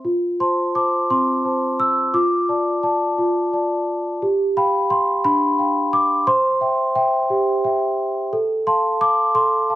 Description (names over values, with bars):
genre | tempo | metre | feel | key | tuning
classical, lullaby for celesta | 58 BPM (dotted quarters) | 6/8 | rubato | unclear | A4 = 440 Hz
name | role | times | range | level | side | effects
large celesta | solo | 0.0-9.8 s | C4 to E6 | -17 LUFS | equal | none
room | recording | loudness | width
light reverb | close, detailed microphones | -17 LUFS | side -15 dB against mid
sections
0.0-9.8 A section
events
none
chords
0.0 F; 2.1 Dm/F; 4.2 G7; 6.3 C; 8.3 F/A